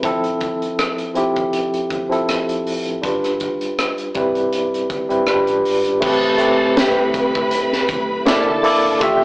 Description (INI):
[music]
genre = lush 1970s-style soul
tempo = 80 BPM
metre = 4/4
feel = swing 54% on 16ths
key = unclear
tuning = A4 = 439 Hz
[part]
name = barky tine electric piano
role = accompaniment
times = 0.0-9.2 s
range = F3 to E5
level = -17 LUFS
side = equal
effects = fast tremolo
[part]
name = vintage muted fingered electric bass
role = bass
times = 0.0-9.2 s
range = E1 to A2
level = -39 LUFS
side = equal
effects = none
[part]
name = tight funk drum kit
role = drums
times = 0.0-9.2 s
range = crash cymbal, hi-hat, kick drum, rim click, snare drum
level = -22 LUFS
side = equal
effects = none
[part]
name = rich studio violin section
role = second line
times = 6.0-9.2 s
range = G4 to B5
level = -22 LUFS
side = equal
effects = none
[part]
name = warm studio string section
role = sustained chords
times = 6.0-9.2 s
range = C3 to E5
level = -29 LUFS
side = equal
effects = none
[part]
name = electric guitar through a small old amp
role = riff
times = 6.8-8.5 s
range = Bb3 to B4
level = -23 LUFS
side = equal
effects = none
[sound]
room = moderate stone room reverb, RT60 1.0 s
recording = rough rehearsal-room recording, AM radio sound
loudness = -16 LUFS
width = side -23 dB against mid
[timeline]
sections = 0.0-6.0 A section; 6.0-9.2 B section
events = none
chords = 0.0 Fmaj7; 3.0 G7; 4.2 Cmaj7; 5.3 G7; 6.0 Am9; 8.3 C13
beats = | 0.04 0.79 1.54 2.29 | 3.03 3.78 4.53 5.28 | 6.02 6.77 7.52 8.27 | 9.01